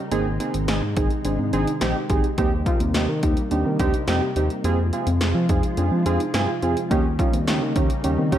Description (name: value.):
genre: synth-pop.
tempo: 106 BPM.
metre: 4/4.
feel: straight.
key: Eb major.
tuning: A4 = 435 Hz.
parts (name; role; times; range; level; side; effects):
soft string machine; sustained chords; 0.0-8.4 s; C3 to F4; -29 LUFS; left 1 dB; ensemble chorus.
warm analog keys; accompaniment; 0.1-8.4 s; C4 to Ab4; -25 LUFS; right 3 dB; chorus, dub echo.
soft round pluck; arpeggios; 0.1-8.4 s; Bb3 to G4; -29 LUFS; right 2 dB; chorus, dub echo.
smooth synth bass; bass; 0.1-8.4 s; Ab1 to F3; -24 LUFS; equal; none.
punchy analog drum machine; drums; 0.1-8.4 s; hi-hat, kick drum, snare drum; -24 LUFS; left 1 dB; none.
room: light reverb, digital ambience.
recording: echo-heavy mix.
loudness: -19 LUFS.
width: side -11 dB against mid.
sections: 0.0-8.4 A section.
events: none.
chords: 0.1 Ab; 2.4 Eb6; 4.6 Fm; 6.9 Eb7.